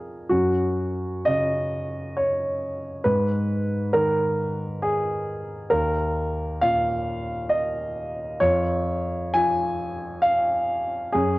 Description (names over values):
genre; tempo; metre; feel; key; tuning
neoclassical minimalist piano; 67 BPM; 3/4; uneven beats, rubato; Eb minor; A4 = 438 Hz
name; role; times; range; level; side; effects
warm grand piano; solo; 0.0-11.4 s; Eb2 to Ab5; -22 LUFS; equal; cassette tape
room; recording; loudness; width
moderate spring reverb, RT60 1.9 s; home recording on cassette; -22 LUFS; side -19 dB against mid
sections
0.0-11.4 A section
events
none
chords
0.3 Gb5; 3.1 Abmadd9; 5.7 Ebsus2; 8.4 N.C.